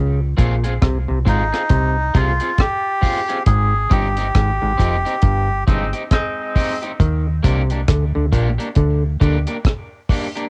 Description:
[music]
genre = roots reggae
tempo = 68 BPM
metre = 4/4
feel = swing 60% on 16ths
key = Eb major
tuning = A4 = 440 Hz
[part]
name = mellow clav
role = riff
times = 0.0-9.4 s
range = F2 to Eb3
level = -25 LUFS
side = equal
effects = cassette tape
[part]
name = deep dub fingered electric bass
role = bass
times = 0.0-9.5 s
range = F1 to Eb2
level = -22 LUFS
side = equal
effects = none
[part]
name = electric guitar at the edge of break-up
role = accompaniment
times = 0.4-10.4 s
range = Bb3 to Ab4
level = -30 LUFS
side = equal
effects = subtle chorus, cassette tape, dub echo
[part]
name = deep reggae drum kit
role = drums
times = 0.4-10.5 s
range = hi-hat, kick drum, rim click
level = -20 LUFS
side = equal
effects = cassette tape
[part]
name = melodica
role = melody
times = 1.3-5.6 s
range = Eb4 to Ab4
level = -23 LUFS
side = equal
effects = cassette tape, dub echo
[part]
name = clear horn section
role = second line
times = 5.7-6.8 s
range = Ab3 to Eb4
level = -27 LUFS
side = equal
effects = cassette tape, dub echo
[sound]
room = little or no reverb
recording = home recording on cassette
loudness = -18 LUFS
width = mono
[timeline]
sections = 0.0-10.5 A section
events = band accent 3.5-7.0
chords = 0.0 Dbmaj7; 3.5 Abmaj7; 7.0 Ebmaj7

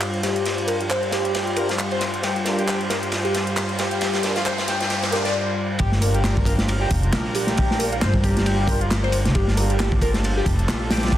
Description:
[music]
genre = breakbeat, breaks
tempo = 135 BPM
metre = 4/4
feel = swing 56% on 16ths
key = G minor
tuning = A4 = 439 Hz
[part]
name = lush unison pad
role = sustained chords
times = 0.0-11.2 s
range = G2 to C5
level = -27 LUFS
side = equal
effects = chorus, sidechain pumping
[part]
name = crunchy breakbeat drum kit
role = drums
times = 0.0-11.2 s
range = kick drum, ride cymbal, snare drum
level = -24 LUFS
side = equal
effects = high-pass filter on kick, high-pass filter on cymbals, high-pass filter on snare, high-pass filter on room
[part]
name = garage drum kit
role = drums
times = 0.0-11.2 s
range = handclaps, hi-hat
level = -31 LUFS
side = right 1 dB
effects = none
[part]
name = riser and impact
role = sound effects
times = 0.9-7.6 s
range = none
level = -35 LUFS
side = equal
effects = none
[part]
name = overdriven synth lead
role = riff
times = 0.2-11.2 s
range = F4 to D5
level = -26 LUFS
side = left 1 dB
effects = phaser, tube saturation, vintage 12-bit sampler grit, dub echo
[part]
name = mellow brass ensemble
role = stabs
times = 0.7-9.7 s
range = D4 to Bb4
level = -30 LUFS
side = right 1 dB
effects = dub echo
[part]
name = upright bass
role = bass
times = 5.8-11.2 s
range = F1 to D2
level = -22 LUFS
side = equal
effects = none
[sound]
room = moderate plate reverb, RT60 1.7 s, small room ambience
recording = dense, heavily limited modern master, vinyl crackle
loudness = -19 LUFS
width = side -12 dB against mid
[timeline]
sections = 0.0-5.8 A section; 5.8-11.2 B section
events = build-up 0.0-5.8; drum fill 0.0-5.3; filter sweep on analog synth lead 0.0-5.8; filter sweep on brass ensemble 0.0-5.8; filter sweep on analog synth pad 0.0-5.8; break 5.3-5.8; drop 5.8-11.2; impact 5.8-7.6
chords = 0.0 Gm7

